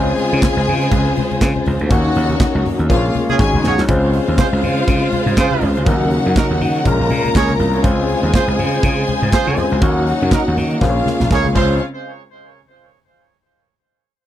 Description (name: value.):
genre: disco.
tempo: 121 BPM.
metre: 4/4.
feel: swing 56% on 16ths.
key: Db major.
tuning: A4 = 439 Hz.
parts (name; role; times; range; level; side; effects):
clear studio string section; second line; 0.0-11.8 s; Db4 to Bb5; -22 LUFS; left 1 dB; none.
overdriven tine electric piano; accompaniment; 0.0-11.8 s; Gb3 to Db5; -20 LUFS; left 4 dB; none.
warm studio string section; sustained chords; 0.0-11.8 s; Db3 to C5; -23 LUFS; equal; none.
gritty slap bass; bass; 0.0-11.8 s; Ab1 to Eb3; -18 LUFS; right 1 dB; overdrive.
modern studio drum kit; drums; 0.2-11.7 s; crash cymbal, handclaps, hi-hat, kick drum, snare drum; -17 LUFS; right 1 dB; none.
congas; percussion; 0.2-11.8 s; none; -26 LUFS; left 4 dB; none.
warm horn section; stabs; 3.3-11.7 s; Ab3 to Db5; -22 LUFS; right 6 dB; tape echo.
room: little or no reverb.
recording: dry, close 1970s-style studio recording.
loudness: -13 LUFS.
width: side -12 dB against mid.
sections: 0.0-3.9 A section; 3.9-11.8 B section; 11.8-13.8 C section.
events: band accent 1.9-3.9; drum fill 3.4-3.9, 10.8-11.8.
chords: 0.0 Dbmaj7; 1.9 Ebm7; 2.9 Bbm7; 3.4 Ab7sus4; 3.9 Dbmaj7; 5.9 Ebm7; 6.9 Bbm7; 7.8 Dbmaj7; 9.8 Ebm7; 10.8 Bbm7; 11.6 Dbmaj7; 11.8 N.C..